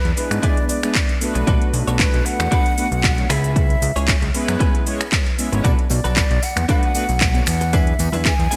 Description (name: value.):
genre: nu-disco, nu disco.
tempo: 115 BPM.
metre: 4/4.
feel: swing 54% on 16ths.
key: B dorian.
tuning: A4 = 440 Hz.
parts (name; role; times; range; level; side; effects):
breathy concert flute; melody; 0.0-8.6 s; B4 to G#5; -29 LUFS; equal; delay.
fat analog bass; bass; 0.0-8.5 s; G#1 to G#2; -23 LUFS; equal; none.
house drum kit; drums; 0.1-8.6 s; finger snaps, handclaps, hi-hat, shaker; -26 LUFS; equal; overdrive, gated reverb.
mellow synth brass; accompaniment; 0.2-8.6 s; G#3 to E5; -28 LUFS; equal; chorus, sidechain pumping, digital delay.
direct-recorded clean electric guitar; riff; 0.2-8.6 s; C#4 to G#5; -31 LUFS; equal; lush chorus, digital delay.
electronic kick drum; drums; 0.4-8.4 s; none; -22 LUFS; equal; overdrive.
tambourine and congas; percussion; 5.6-8.6 s; none; -33 LUFS; equal; none.
room: light reverb, digital ambience.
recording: bright 1980s-style digital production.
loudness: -18 LUFS.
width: mono.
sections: 0.0-8.6 A section.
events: clean electric guitar fill 8.3-8.6.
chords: 0.0 E7; 1.5 Bm7; 3.3 C#m7; 5.6 Bm7; 7.7 E7.